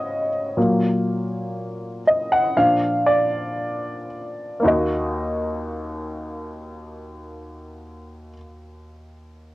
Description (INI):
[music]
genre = pop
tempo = 56-62 BPM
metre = 4/4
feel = straight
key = Eb minor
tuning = A4 = 439 Hz
[part]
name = warm baby grand piano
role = accompaniment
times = 0.0-9.5 s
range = Eb2 to Gb5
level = -21 LUFS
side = equal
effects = cassette tape
[sound]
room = moderate studio ambience, RT60 0.5 s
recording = home recording on cassette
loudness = -19 LUFS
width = side -17 dB against mid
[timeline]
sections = 0.0-4.6 A section; 4.6-8.9 B section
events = slowing down 0.0-4.6; grand piano solo 0.0-4.6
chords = 0.0 Abm7; 0.6 Ebm/Bb; 2.6 Bb; 4.6 Ebm